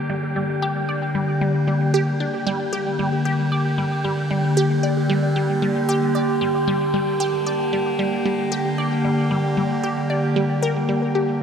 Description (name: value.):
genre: ambient, sequencer-driven space music.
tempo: 114 BPM.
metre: 4/4.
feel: straight.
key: G minor.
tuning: A4 = 440 Hz.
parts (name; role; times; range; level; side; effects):
evolving wavetable pad; sustained chords; 0.0-11.4 s; D3 to G4; -21 LUFS; equal; phaser, built-in reverb.
wind-like tuned noise texture; texture; 0.0-11.4 s; G5; -30 LUFS; right 1 dB; built-in reverb.
resonant blip pluck; riff; 0.1-11.3 s; G3 to D5; -25 LUFS; equal; phaser, analog delay.
room: wet cathedral reverb, RT60 6.3 s.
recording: in a vast, echoing space.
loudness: -19 LUFS.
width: side -7 dB against mid.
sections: 0.0-11.4 A section.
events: none.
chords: 0.0 Gm.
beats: 0.36 | 0.89 1.41 1.94 2.47 | 2.99 3.52 4.04 4.57 | 5.10 5.62 6.15 6.68 | 7.20 7.73 8.26 8.78 | 9.31 9.84 10.36 10.89 | 11.41.